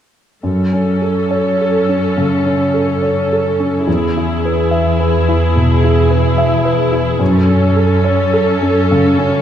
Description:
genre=cinematic, emotional film score for orchestra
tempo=71 BPM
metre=4/4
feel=rubato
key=F# minor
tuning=A4 = 444 Hz
part: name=rich studio viola section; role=accompaniment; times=0.4-9.4 s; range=C#4 to A4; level=-18 LUFS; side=left 1 dB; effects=none
part: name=warm baby grand piano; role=accompaniment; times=0.4-9.4 s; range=E2 to E5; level=-14 LUFS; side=equal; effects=none
part: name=rich studio cello section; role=bass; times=0.4-9.4 s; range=E2 to F#2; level=-18 LUFS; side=equal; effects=none
room=wet scoring stage reverb, RT60 1.7 s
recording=recorded in a church or concert hall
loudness=-12 LUFS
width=side -10 dB against mid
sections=0.4-9.4 A section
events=none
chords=0.4 F#m; 3.9 E; 7.2 F#m

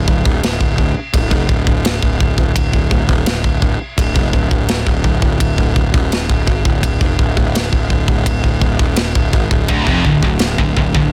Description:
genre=heavy metal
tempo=84 BPM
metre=4/4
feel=straight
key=D phrygian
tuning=A4 = 440 Hz
part: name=fuzz picked electric bass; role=bass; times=0.0-11.1 s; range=D1 to G#1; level=-19 LUFS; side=equal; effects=overdrive
part: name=modern studio drum kit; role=drums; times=0.1-11.1 s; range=kick drum, ride cymbal, snare drum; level=-18 LUFS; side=equal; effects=none
part: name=scooped high-gain guitar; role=riff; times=9.7-11.1 s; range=D2 to F2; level=-21 LUFS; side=equal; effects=distortion
part: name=scooped high-gain guitar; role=riff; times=9.7-11.1 s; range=D2 to F2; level=-20 LUFS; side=equal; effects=distortion
room=little or no reverb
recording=dense, heavily limited modern master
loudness=-15 LUFS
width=mono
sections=0.0-11.1 A section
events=none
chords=none

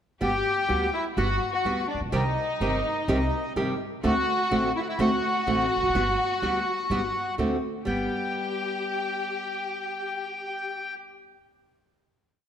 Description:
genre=tango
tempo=126 BPM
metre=4/4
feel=rubato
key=G major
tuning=A4 = 440 Hz
part: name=bandoneon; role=melody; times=0.2-10.9 s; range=D4 to G5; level=-28 LUFS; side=left 1 dB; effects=none
part: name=warm studio violin section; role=second line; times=0.2-10.9 s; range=D4 to G4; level=-31 LUFS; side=left 2 dB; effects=none
part: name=nylon-string guitar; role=accompaniment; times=0.2-11.4 s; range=C3 to G4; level=-28 LUFS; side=right 1 dB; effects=none
part: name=upright bass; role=bass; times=0.2-8.1 s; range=E1 to D2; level=-32 LUFS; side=right 1 dB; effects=none
room=moderate scoring stage reverb, RT60 1.5 s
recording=none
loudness=-24 LUFS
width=side -9 dB against mid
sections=0.2-7.9 A section; 7.9-11.7 final chord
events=none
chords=0.2 Gmaj7; 2.1 Cm; 4.0 D7; 5.9 Gmaj7; 7.4 D7; 7.9 G

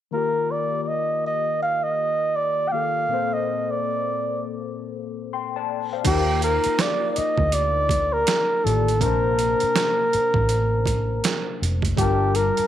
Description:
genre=R&B, neo-soul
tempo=81 BPM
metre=4/4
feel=swing 61% on 16ths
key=unclear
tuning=A4 = 437 Hz
part: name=trumpet with bucket mute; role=melody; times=0.1-12.7 s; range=G4 to G5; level=-22 LUFS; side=right 1 dB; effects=slapback echo
part: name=overdriven tine electric piano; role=accompaniment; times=0.1-12.7 s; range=Bb2 to C6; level=-28 LUFS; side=left 11 dB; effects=analog chorus
part: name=boom bap sampler-style drum kit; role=drums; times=6.0-12.7 s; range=crash cymbal, hi-hat, kick drum, snare drum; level=-25 LUFS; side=right 4 dB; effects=overdrive
part: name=vintage muted fingered electric bass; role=bass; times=6.1-12.6 s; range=F1 to Eb2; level=-24 LUFS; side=equal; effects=none
room=moderate spring reverb, RT60 2.1 s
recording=1960s-style stereo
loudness=-20 LUFS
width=side -11 dB against mid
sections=0.1-6.0 A section; 6.0-12.7 B section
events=none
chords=0.1 Eb; 3.1 Bbmaj9; 6.0 Ebmaj7; 9.0 Bbmaj9; 12.0 Gm9

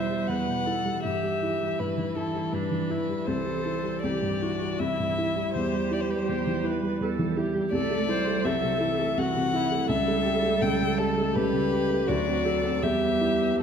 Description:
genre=classical, slow romantic movement for piano quartet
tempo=81 BPM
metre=3/4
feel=rubato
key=E minor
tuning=A4 = 439 Hz
part: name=clear violin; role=melody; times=0.0-13.6 s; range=G4 to G5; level=-29 LUFS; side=left 5 dB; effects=none
part: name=rich cello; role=second line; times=0.0-13.6 s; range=E3 to A3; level=-32 LUFS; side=right 10 dB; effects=none
part: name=clear viola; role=accompaniment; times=0.0-13.6 s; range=D4 to C5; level=-32 LUFS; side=right 4 dB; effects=none
part: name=warm baby grand piano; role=accompaniment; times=0.0-13.6 s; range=C2 to G4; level=-28 LUFS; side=left 1 dB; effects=none
room=moderate concert hall reverb, RT60 1.9 s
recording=minimal, uncompressed stereo recording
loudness=-24 LUFS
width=side -7 dB against mid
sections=0.0-13.6 A section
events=none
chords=0.0 Em; 1.0 Em/G; 3.3 C; 5.5 Emadd11; 7.7 Am/C; 9.9 A7/C#; 12.1 D7; 12.8 Em

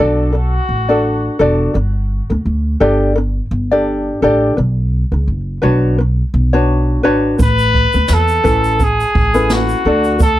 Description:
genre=acoustic pop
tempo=85 BPM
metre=4/4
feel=swing 55% on 16ths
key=A major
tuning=A4 = 441 Hz
part: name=clear trumpet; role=melody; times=0.0-1.4, 7.4-10.4 s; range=F#4 to B4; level=-17 LUFS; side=equal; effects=tape echo
part: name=ukulele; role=accompaniment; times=0.0-10.4 s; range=C#4 to D5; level=-14 LUFS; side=left 1 dB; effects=none
part: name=upright bass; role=bass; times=0.0-10.4 s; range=E1 to E2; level=-16 LUFS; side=equal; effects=none
part: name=jazz brush drum kit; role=drums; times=7.4-10.4 s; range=kick drum, shaker, snare drum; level=-17 LUFS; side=right 1 dB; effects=none
room=little or no reverb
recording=none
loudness=-12 LUFS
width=side -14 dB against mid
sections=0.0-10.4 A section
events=none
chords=0.0 D; 1.8 Gsus2; 4.6 Bmadd9; 7.4 Aadd9; 9.9 D

